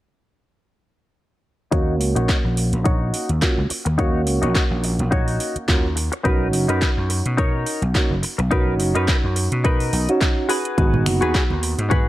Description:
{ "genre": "nu-disco, nu disco", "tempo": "106 BPM", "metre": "4/4", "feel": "swing 56% on 16ths", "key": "Eb minor", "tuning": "A4 = 440 Hz", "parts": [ { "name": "dark concert grand piano", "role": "accompaniment", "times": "1.7-12.1 s", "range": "Bb3 to F5", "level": "-25 LUFS", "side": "right 2 dB", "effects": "sidechain pumping, low-pass filter, analog delay" }, { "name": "direct-recorded clean electric guitar", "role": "riff", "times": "1.7-12.1 s", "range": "Eb4 to Db5", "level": "-25 LUFS", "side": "left 2 dB", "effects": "analog chorus, low-pass filter, analog delay" }, { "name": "vintage slap bass", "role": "bass", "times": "1.7-12.1 s", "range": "F#1 to B2", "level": "-22 LUFS", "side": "equal", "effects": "none" }, { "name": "electronic kick drum", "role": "drums", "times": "1.7-12.0 s", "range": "none", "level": "-20 LUFS", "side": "equal", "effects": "studio reverb" }, { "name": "house drum kit", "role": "drums", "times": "1.7-12.0 s", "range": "finger snaps, handclaps, hi-hat", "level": "-26 LUFS", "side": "right 1 dB", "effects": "studio reverb" }, { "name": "congas", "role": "percussion", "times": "10.9-12.0 s", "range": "none", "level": "-25 LUFS", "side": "right 3 dB", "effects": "none" } ], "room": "digital ambience", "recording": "dry, gritty hardware recording", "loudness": "-18 LUFS", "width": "side -15 dB against mid", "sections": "1.7-12.1 A section", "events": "filter sweep on clean electric guitar 1.7-12.1; filter sweep on grand piano 1.7-12.1", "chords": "1.7 Ebm7; 6.3 Bmaj7; 10.5 Abm7" }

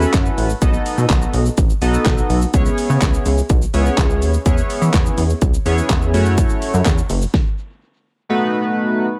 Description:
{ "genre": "dance-pop", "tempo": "125 BPM", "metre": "4/4", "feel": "straight", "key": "unclear", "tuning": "A4 = 436 Hz", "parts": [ { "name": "chorused polysynth", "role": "accompaniment", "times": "0.0-9.1 s", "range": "A3 to D#5", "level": "-22 LUFS", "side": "equal", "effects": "sidechain pumping" }, { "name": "chorused synth bass", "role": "bass", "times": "0.0-7.3 s", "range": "F#1 to E3", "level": "-20 LUFS", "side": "equal", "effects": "sidechain pumping" }, { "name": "pop drum kit", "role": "drums", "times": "0.0-7.4 s", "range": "handclaps, hi-hat, kick drum, shaker, snare drum", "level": "-20 LUFS", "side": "equal", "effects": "none" } ], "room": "light reverb, digital ambience", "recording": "echo-heavy mix", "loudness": "-17 LUFS", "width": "mono", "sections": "0.0-8.3 A section", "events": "stop 7.3-8.3", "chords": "0.0 F#m7; 0.6 B7; 2.5 C#m7; 4.5 E6; 6.1 F#m7; 7.3 N.C.; 8.3 B7" }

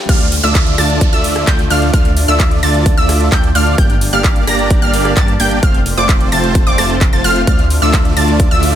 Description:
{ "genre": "EDM, festival progressive house", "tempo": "130 BPM", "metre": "4/4", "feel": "straight", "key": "D minor", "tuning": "A4 = 441 Hz", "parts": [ { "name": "lush unison pad", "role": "sustained chords", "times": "0.1-8.8 s", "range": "A3 to D5", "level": "-22 LUFS", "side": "equal", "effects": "chorus, phaser, sidechain pumping" }, { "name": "wide unison pluck", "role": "arpeggios", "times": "0.1-8.8 s", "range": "D6 to Bb6", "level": "-18 LUFS", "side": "equal", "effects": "sidechain pumping, ping-pong delay" }, { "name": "dense compressed supersaw", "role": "riff", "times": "0.1-8.8 s", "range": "A3 to Bb5", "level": "-18 LUFS", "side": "right 1 dB", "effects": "sidechain pumping, ping-pong delay" }, { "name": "wide detuned saw bass", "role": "bass", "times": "0.1-8.8 s", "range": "F1 to G2", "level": "-17 LUFS", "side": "equal", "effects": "chorus, tube saturation, sidechain pumping" }, { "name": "big-room dance drum kit", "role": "drums", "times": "0.1-8.7 s", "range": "crash cymbal, handclaps, hi-hat, rim click", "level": "-21 LUFS", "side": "equal", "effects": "none" }, { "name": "electronic kick drum", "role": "drums", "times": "0.1-8.5 s", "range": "none", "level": "-13 LUFS", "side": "equal", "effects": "high-pass filter on kick" }, { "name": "downlifter", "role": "sound effects", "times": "0.1-3.8 s", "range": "none", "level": "-24 LUFS", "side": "right 4 dB", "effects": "none" } ], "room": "digital ambience", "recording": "high-pass filter", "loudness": "-10 LUFS", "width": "side -10 dB against mid", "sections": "0.1-8.8 A section", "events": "drop 0.1-8.8", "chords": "0.1 Dm; 3.8 Gm; 5.6 F; 7.5 Dm" }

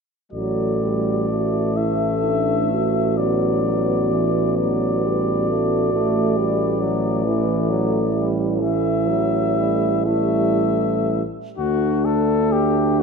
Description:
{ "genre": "classical, hymn-like piece for brass band", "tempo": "36-46 BPM (dotted quarters)", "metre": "12/8", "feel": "rubato", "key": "D major", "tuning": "A4 = 443 Hz", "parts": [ { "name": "mellow cornet", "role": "melody", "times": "0.3-13.0 s", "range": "F#4 to E5", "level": "-24 LUFS", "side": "left 9 dB", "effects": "none" }, { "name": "dark French horn section", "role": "second line", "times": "0.3-13.0 s", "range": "D4 to F#4", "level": "-24 LUFS", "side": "right 10 dB", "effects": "none" }, { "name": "bright trombone", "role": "accompaniment", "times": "0.3-13.0 s", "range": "E3 to A3", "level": "-26 LUFS", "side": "right 3 dB", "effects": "none" }, { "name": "dark trombone section", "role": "accompaniment", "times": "0.3-13.0 s", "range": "G3 to D4", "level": "-26 LUFS", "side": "left 4 dB", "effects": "none" }, { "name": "warm tuba", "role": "bass", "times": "0.3-13.0 s", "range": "A1 to D2", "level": "-23 LUFS", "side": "equal", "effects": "none" } ], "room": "moderate scoring stage reverb, RT60 1.7 s", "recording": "minimal, uncompressed stereo recording", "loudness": "-18 LUFS", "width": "side -5 dB against mid", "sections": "0.3-11.6 A section; 11.6-13.0 B section", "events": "none", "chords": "0.3 D/A; 5.9 A5; 11.6 D" }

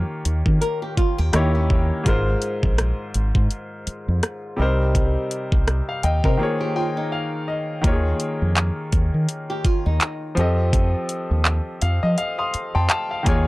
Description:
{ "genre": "contemporary R&B", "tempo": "83 BPM", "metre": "4/4", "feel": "swing 58% on 16ths", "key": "unclear", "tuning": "A4 = 441 Hz", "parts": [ { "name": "clear concert grand piano", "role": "accompaniment", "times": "0.0-13.5 s", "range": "Ab2 to Eb6", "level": "-24 LUFS", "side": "left 1 dB", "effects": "none" }, { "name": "deep dub fingered electric bass", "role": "bass", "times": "0.0-13.5 s", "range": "Ab1 to F3", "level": "-20 LUFS", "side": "equal", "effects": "none" }, { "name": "trap drum kit", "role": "drums", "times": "0.3-13.5 s", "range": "handclaps, hi-hat, kick drum, rim click", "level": "-20 LUFS", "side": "equal", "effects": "none" }, { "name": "flamenco guitar", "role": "arpeggios", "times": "0.6-10.3 s", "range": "Db4 to Bb4", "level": "-27 LUFS", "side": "equal", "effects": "analog delay" } ], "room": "little or no reverb", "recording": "dry, gritty hardware recording, transformer saturation", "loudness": "-19 LUFS", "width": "side -19 dB against mid", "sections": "0.0-7.8 A section; 7.8-13.5 B section", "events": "break 6.4-7.8; grand piano fill 6.4-7.8, 11.5-13.5", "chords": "0.0 Eb9; 1.3 Eb7b9; 2.1 Ab6; 4.6 Cm7; 6.4 Eb9sus4; 10.4 F7" }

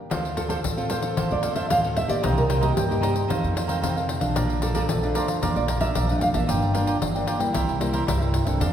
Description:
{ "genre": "samba and choro", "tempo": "113 BPM", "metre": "4/4", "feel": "straight", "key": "D minor", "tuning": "A4 = 443 Hz", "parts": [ { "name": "cavaquinho", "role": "accompaniment", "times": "0.1-8.7 s", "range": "D4 to A5", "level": "-29 LUFS", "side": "right 3 dB", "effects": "none" }, { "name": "nylon-string guitar", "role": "accompaniment", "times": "0.1-8.7 s", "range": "F2 to A4", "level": "-28 LUFS", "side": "left 1 dB", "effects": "none" }, { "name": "upright bass", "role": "bass", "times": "0.1-8.7 s", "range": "G1 to F2", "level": "-27 LUFS", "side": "equal", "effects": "none" }, { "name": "pandeiro", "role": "percussion", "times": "0.1-8.7 s", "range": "none", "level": "-28 LUFS", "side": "left 3 dB", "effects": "none" }, { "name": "nylon-string guitar", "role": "melody", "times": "0.4-7.2 s", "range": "G4 to G5", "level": "-27 LUFS", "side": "right 1 dB", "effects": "none" } ], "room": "wet concert hall reverb, RT60 2.0 s", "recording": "recorded in a church or concert hall", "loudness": "-21 LUFS", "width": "side -9 dB against mid", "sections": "0.1-8.7 A section", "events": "none", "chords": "0.1 Dm7; 2.2 Cm7; 3.3 F7; 4.4 Bbmaj7; 6.5 Gm7; 7.5 C7" }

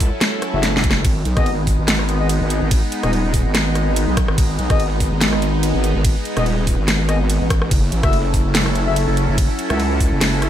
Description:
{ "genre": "heavy wobble dubstep", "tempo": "144 BPM", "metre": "4/4", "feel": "swing 54% on 16ths, half-time", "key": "G# phrygian", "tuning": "A4 = 439 Hz", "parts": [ { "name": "supersaw pad", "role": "sustained chords", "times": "0.0-10.5 s", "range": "F#3 to A4", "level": "-23 LUFS", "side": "equal", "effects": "phaser, sidechain pumping" }, { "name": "wobble bass", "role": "bass", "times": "0.0-10.5 s", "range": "D#1 to C#2", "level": "-19 LUFS", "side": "equal", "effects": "chorus, overdrive" }, { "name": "dubstep drum kit", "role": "drums", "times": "0.0-10.5 s", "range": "hi-hat, ride cymbal, rim click, snare drum", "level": "-22 LUFS", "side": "equal", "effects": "studio reverb" }, { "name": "electronic kick drum", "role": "drums", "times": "0.0-10.1 s", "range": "none", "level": "-18 LUFS", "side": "equal", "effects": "studio reverb" }, { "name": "mellow brass ensemble", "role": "stabs", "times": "0.5-9.8 s", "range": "A3 to E5", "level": "-26 LUFS", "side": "left 6 dB", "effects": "vintage 12-bit sampler grit, ping-pong delay" } ], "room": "little or no reverb", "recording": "none", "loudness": "-15 LUFS", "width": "side -11 dB against mid", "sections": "0.0-10.5 A section", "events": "drum fill 0.6-1.0", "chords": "0.0 F#m7; 1.0 G#m; 7.7 F#m7" }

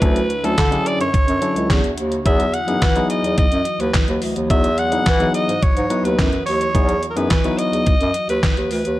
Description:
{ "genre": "early-eighties boogie funk", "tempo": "107 BPM", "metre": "4/4", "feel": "straight", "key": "E major", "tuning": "A4 = 436 Hz", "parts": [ { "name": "raspy alto saxophone", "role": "melody", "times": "0.0-9.0 s", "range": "A4 to F#5", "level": "-22 LUFS", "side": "equal", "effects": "none" }, { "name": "overdriven tine electric piano", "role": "accompaniment", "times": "0.0-7.9 s", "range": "F#3 to B4", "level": "-23 LUFS", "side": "left 2 dB", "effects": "none" }, { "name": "lush unison pad", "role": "sustained chords", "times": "0.0-9.0 s", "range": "D3 to D#5", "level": "-30 LUFS", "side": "equal", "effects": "chorus" }, { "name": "mellow bass clarinet", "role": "bass", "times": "0.0-9.0 s", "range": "C#2 to E3", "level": "-21 LUFS", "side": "equal", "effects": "none" }, { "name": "detuned 8-bit digital drum machine", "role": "drums", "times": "0.0-9.0 s", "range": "handclaps, hi-hat, kick drum, snare drum", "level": "-18 LUFS", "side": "equal", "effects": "none" } ], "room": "little or no reverb", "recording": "dark, warm production", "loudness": "-16 LUFS", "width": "side -16 dB against mid", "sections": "0.0-9.0 A section", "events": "none", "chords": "0.0 Dmaj9; 2.3 Emaj9" }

